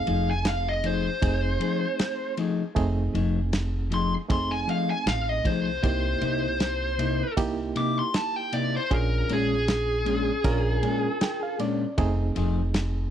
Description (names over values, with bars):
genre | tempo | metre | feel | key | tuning
straight-eighth soul blues | 78 BPM | 4/4 | swing 54% on 16ths | unclear | A4 = 440 Hz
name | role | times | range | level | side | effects
smooth overdriven lead guitar | melody | 0.0-11.6 s | Ab4 to D6 | -28 LUFS | equal | slapback echo
barky reed electric piano | accompaniment | 0.0-13.1 s | A3 to Ab5 | -32 LUFS | right 6 dB | overdrive, fast tremolo
clean electric guitar | stabs | 0.1-12.6 s | Bb2 to G#4 | -30 LUFS | left 4 dB | spring reverb
upright bass | bass | 0.1-13.1 s | F1 to C2 | -28 LUFS | equal | none
warm soul drum kit | drums | 0.1-12.9 s | kick drum, ride cymbal, snare drum | -29 LUFS | equal | none
room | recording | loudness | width
little or no reverb | dry, close 1970s-style studio recording | -23 LUFS | side -10 dB against mid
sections
0.0-13.1 A section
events
lead electric guitar solo 0.0-13.1; reed electric piano fill 10.4-12.0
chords
0.0 F7#9; 5.8 C7#9; 8.9 Bb7#9; 12.0 F7#9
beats
0.45 1.22 1.99 | 2.76 3.53 4.30 5.07 | 5.83 6.60 7.37 8.14 | 8.91 9.68 10.45 11.21 | 11.98 12.75